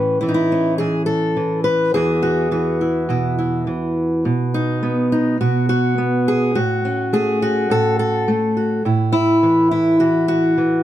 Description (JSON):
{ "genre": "folk, solo fingerstyle acoustic guitar", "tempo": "105 BPM", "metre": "4/4", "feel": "straight", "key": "unclear", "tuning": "A4 = 440 Hz", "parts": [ { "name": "fingerpicked steel-string acoustic guitar", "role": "solo", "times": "0.0-10.8 s", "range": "E2 to B4", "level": "-16 LUFS", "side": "equal", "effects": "none" } ], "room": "light reverb", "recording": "close, detailed microphones", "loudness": "-16 LUFS", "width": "side -12 dB against mid", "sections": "0.0-10.8 A section", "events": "none", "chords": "0.0 Aadd9; 1.9 Esus2; 4.2 N.C.; 6.6 F#m/A; 8.9 A5" }